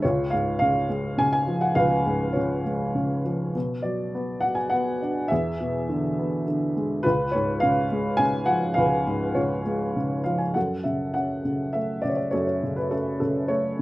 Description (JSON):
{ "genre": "classical, lyrical solo piano", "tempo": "103 BPM", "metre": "3/4", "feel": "rubato", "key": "F# minor", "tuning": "A4 = 442 Hz", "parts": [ { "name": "dark upright piano", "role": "solo", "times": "0.0-13.8 s", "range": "C#2 to G#5", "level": "-22 LUFS", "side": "equal", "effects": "none" } ], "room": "light reverb", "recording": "close, detailed microphones", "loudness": "-22 LUFS", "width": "side -18 dB against mid", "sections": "0.0-10.6 A section; 10.6-13.8 B section", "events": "none", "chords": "0.0 C#7; 3.5 Bm; 5.3 E7; 7.0 C#7; 10.6 F#m" }